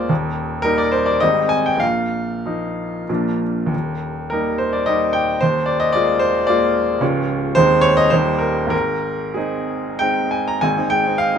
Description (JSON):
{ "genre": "classical, romantic character piece for solo piano", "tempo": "92-116 BPM", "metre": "3/4", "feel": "rubato", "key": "Ab major from 7.0 s", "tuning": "A4 = 439 Hz", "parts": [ { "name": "clear baby grand piano", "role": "solo", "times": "0.0-11.4 s", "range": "Db1 to Bb5", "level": "-16 LUFS", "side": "equal", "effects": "none" } ], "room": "light reverb", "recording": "nothing above 10.6 kHz", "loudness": "-16 LUFS", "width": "side -7 dB against mid", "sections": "0.0-10.6 A section", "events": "none", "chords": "0.1 Eb; 1.2 Abmaj7; 1.8 Bbsus4; 3.1 Bb; 3.7 Eb; 5.4 Bb7/Eb; 7.0 Db; 7.6 Ab/Eb; 8.1 Eb; 8.7 Ab", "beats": "| 0.10 0.64 1.21 | 1.81 2.45 3.09 | 3.72 4.31 4.87 | 5.42 5.94 6.48 | 7.01 7.55 8.12 | 8.72 9.36 10.01 | 10.63 11.21" }